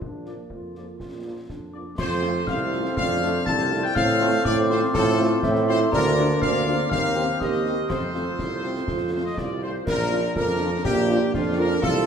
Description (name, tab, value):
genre	military-style march for wind band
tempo	122 BPM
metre	2/4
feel	straight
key	F major, Bb major from 5.9 s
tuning	A4 = 440 Hz
part	dark woodwind section	second line	0.0-12.1 s	D4 to Eb5	-31 LUFS	equal	none
part	warm euphonium	second line	0.0-9.6 s	Bb3 to G4	-30 LUFS	right 4 dB	none
part	warm tuba	bass	0.0-12.1 s	Bb1 to A2	-26 LUFS	right 2 dB	none
part	concert bass drum, concert snare drum and clash cymbals	drums	0.0-12.1 s	none	-32 LUFS	left 2 dB	none
part	clear trumpet section	melody	0.3-12.1 s	F4 to A5	-28 LUFS	left 2 dB	none
part	warm French horn section	accompaniment	0.3-11.7 s	F3 to G4	-32 LUFS	left 4 dB	none
part	glockenspiel with rubber mallets	second line	1.7-9.3 s	A5 to A6	-30 LUFS	left 3 dB	none
part	mellow trombone section	sustained chords	2.0-12.1 s	A3 to F4	-29 LUFS	right 4 dB	none
room	wet scoring stage reverb, RT60 1.6 s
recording	minimal, uncompressed stereo recording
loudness	-20 LUFS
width	side -7 dB against mid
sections	0.0-2.0 A section; 2.0-9.9 B section; 9.9-12.1 A section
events	none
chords	0.0 Bb; 2.0 F; 4.0 F/A; 5.9 Bb/D; 6.9 Cm7/Eb; 7.9 F; 9.9 Bb